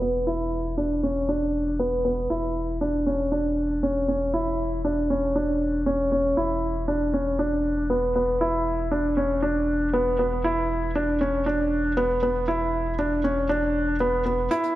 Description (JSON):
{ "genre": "piano and strings electronica", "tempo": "118 BPM", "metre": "4/4", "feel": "straight", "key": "unclear", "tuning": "A4 = 441 Hz", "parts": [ { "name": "felt-muted upright piano", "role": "riff", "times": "0.0-14.8 s", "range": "B3 to E4", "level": "-22 LUFS", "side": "equal", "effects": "tape echo" }, { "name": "warm sub bass", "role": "bass", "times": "0.0-14.5 s", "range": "E1", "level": "-31 LUFS", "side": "equal", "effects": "none" }, { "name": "hi-hat", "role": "drums", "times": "14.5-14.7 s", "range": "none", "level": "-44 LUFS", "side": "right 6 dB", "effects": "high-pass filter on hats, high-pass filter on room" } ], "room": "moderate lush hall reverb, RT60 1.9 s, small room ambience", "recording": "low-pass filter", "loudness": "-22 LUFS", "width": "side -15 dB against mid", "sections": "0.0-14.5 A section", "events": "filter sweep 0.0-14.5", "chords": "0.0 E5; 2.3 C#m/E; 6.4 E5" }